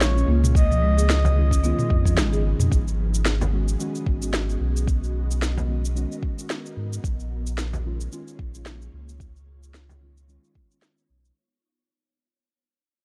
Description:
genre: organic downtempo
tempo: 111 BPM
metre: 4/4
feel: swing 56% on 16ths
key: G# dorian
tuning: A4 = 438 Hz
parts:
  - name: breathy flute-like synth lead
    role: melody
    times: 0.0-2.1 s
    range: C#5 to D#5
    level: -32 LUFS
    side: equal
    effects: chorus, digital delay
  - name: muted felt-like synth keys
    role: accompaniment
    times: 0.0-11.4 s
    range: D#3 to F#4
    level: -35 LUFS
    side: equal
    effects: chorus, sidechain pumping, low-pass filter, digital delay
  - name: ethereal airy pad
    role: sustained chords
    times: 0.1-11.3 s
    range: C#3 to D#5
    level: -38 LUFS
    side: equal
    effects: ensemble chorus, built-in reverb, phaser, sidechain pumping
  - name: buzzing marimba with soft mallets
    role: arpeggios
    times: 0.0-2.7 s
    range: E#3 to G#4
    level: -32 LUFS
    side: equal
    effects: digital delay
  - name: warm sub bass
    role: bass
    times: 0.0-11.3 s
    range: G#1 to G#2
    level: -25 LUFS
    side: equal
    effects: sidechain pumping
  - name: afro-pop drum kit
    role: drums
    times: 0.0-11.3 s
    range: shaker, snare drum, toms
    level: -30 LUFS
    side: equal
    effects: none
  - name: electronic kick drum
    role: drums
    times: 0.6-10.7 s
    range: none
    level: -25 LUFS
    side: equal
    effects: none
  - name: frame drum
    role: percussion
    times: 1.2-10.0 s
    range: none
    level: -32 LUFS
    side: equal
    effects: none
room: digital ambience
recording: dark, warm production, lossy compression artefacts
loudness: -23 LUFS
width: mono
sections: 0.0-2.7 A section; 2.7-11.4 B section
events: fade-out 2.7-11.4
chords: 0.0 A#m7; 0.6 C#9; 2.7 G#m7; 7.0 A#m7; 9.2 C#9

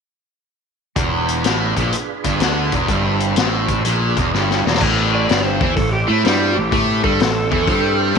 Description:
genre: blues rock power trio and southern rock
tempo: 125 BPM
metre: 4/4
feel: swing 67% on 8ths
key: A minor from 4.8 s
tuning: A4 = 440 Hz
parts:
  - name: overdriven tonewheel organ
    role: sustained chords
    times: 1.0-8.2 s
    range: C4 to C5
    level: -28 LUFS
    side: right 8 dB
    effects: chorus vibrato, slow rotary speaker
  - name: cranked stack guitar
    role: riff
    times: 1.0-8.2 s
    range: E2 to A3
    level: -19 LUFS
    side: equal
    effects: overdrive
  - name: fuzz picked electric bass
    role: bass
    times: 1.0-8.2 s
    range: E1 to A2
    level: -21 LUFS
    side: right 1 dB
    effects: overdrive
  - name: vintage drum kit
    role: drums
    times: 1.0-8.2 s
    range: crash cymbal, hi-hat, kick drum, snare drum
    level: -20 LUFS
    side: left 4 dB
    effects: none
  - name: overdriven slide guitar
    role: melody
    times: 5.1-8.0 s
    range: E4 to D5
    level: -21 LUFS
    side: right 2 dB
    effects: none
room: moderate echo chamber reverb, RT60 1.5 s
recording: 1960s-style stereo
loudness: -15 LUFS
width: side -6 dB against mid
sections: 1.0-4.8 A section; 4.8-8.2 B section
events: drum fill 4.3-4.8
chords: 1.0 E7b9; 2.9 Am; 3.8 E7b9; 4.8 Am

